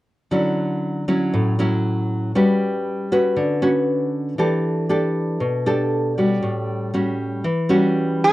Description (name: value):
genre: bossa nova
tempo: 118 BPM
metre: 4/4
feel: straight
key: D major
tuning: A4 = 440 Hz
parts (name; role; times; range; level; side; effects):
- nylon-string guitar; accompaniment; 0.3-8.3 s; A2 to B4; -18 LUFS; equal; none
- metal-body resonator slide guitar; melody; 8.2-8.3 s; A4; -12 LUFS; right 2 dB; none
room: light reverb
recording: worn, warbling old tape, cassette tape, warbly pitch drift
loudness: -18 LUFS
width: side -17 dB against mid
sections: 0.3-8.3 A section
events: none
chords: 0.3 Dmaj9; 2.3 Gmaj7#11; 4.4 Em11; 6.4 A6